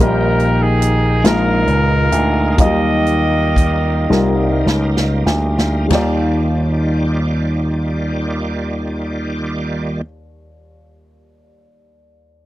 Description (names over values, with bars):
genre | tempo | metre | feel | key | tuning
slow gospel | 30-49 BPM (dotted quarters) | 6/8 | straight | Eb major | A4 = 442 Hz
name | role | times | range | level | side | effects
warm horn section | melody | 0.0-4.7 s | Eb4 to Eb5 | -19 LUFS | right 1 dB | tape echo
dark grand piano | accompaniment | 0.0-12.5 s | Eb2 to Eb5 | -20 LUFS | left 2 dB | none
bright tonewheel organ | sustained chords | 0.0-10.0 s | D3 to G5 | -26 LUFS | right 2 dB | slow rotary speaker, chorus vibrato
slap bass with an envelope filter | bass | 0.0-10.0 s | Bb1 to Eb2 | -17 LUFS | equal | none
natural country drum kit | drums | 0.4-6.2 s | crash cymbal, hi-hat, kick drum, snare drum, toms | -17 LUFS | equal | none
room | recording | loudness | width
little or no reverb | dry, close 1970s-style studio recording | -14 LUFS | side -15 dB against mid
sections
0.0-5.9 A section; 5.9-9.9 B section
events
slowing down 0.0-5.9; drum fill 4.1-5.9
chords
0.0 Eb/Bb; 1.2 Bb7sus4; 2.6 Ebmaj9